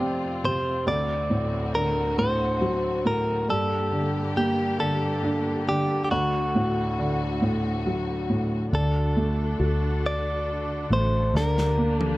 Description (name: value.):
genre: six-eight pop ballad.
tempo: 46 BPM (dotted quarters).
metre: 6/8.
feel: straight.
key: unclear.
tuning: A4 = 439 Hz.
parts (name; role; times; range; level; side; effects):
direct-recorded clean electric guitar; melody; 0.0-12.2 s; F#4 to D5; -27 LUFS; equal; none.
felt-muted upright piano; accompaniment; 0.0-12.2 s; D2 to F#4; -26 LUFS; equal; none.
rich studio string section; sustained chords; 0.0-12.2 s; D2 to A4; -32 LUFS; left 1 dB; none.
vintage muted fingered electric bass; bass; 8.7-12.2 s; A1 to D2; -25 LUFS; equal; none.
modern studio drum kit; drums; 11.4-12.2 s; snare drum, toms; -31 LUFS; left 2 dB; none.
room: light reverb, small room ambience.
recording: none.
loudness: -22 LUFS.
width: side -18 dB against mid.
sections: 0.0-8.7 A section; 8.7-12.2 B section.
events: drum fill 11.3-12.2.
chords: 0.0 F; 0.9 D; 3.5 Gm; 6.1 D; 11.3 Gm/D.